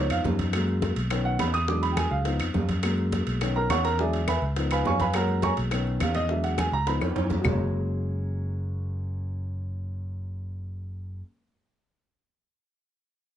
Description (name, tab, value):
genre	Afro-Cuban jazz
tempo	208 BPM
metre	4/4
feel	straight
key	F# major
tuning	A4 = 440 Hz
part	warm baby grand piano	accompaniment	0.0-11.2 s	D#3 to D#6	-28 LUFS	right 1 dB	none
part	fingered electric bass	bass	0.0-11.2 s	F#1 to F#2	-28 LUFS	equal	none
part	claves	percussion	0.1-7.5 s	none	-35 LUFS	left 6 dB	none
part	congas	percussion	0.1-7.5 s	none	-32 LUFS	left 1 dB	none
part	timbales	percussion	0.1-7.5 s	none	-33 LUFS	right 4 dB	none
part	bongos	percussion	0.3-7.5 s	none	-37 LUFS	left 8 dB	none
room	light reverb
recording	nothing above 11.0 kHz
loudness	-24 LUFS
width	side -10 dB against mid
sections	0.0-7.4 A section; 7.4-9.8 B section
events	grand piano solo 0.0-7.4; drum fill 7.0-7.4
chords	0.0 C#7; 0.5 F#add9; 1.1 Badd9; 1.7 E7; 2.3 C#7; 2.8 F#add9; 3.4 Badd9; 4.0 E7; 4.6 C#7; 5.1 F#add9; 5.7 Badd9; 6.3 E7; 6.9 C#7; 7.4 F#add9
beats	0.25 | 0.53 0.82 1.11 1.40 | 1.68 1.97 2.26 2.55 | 2.83 3.12 3.41 3.70 | 3.99 4.28 4.56 4.85 | 5.14 5.43 5.72 6.00 | 6.29 6.58 6.87 7.16 | 7.45 7.73 8.02 8.31 | 8.60 8.89 9.18 9.46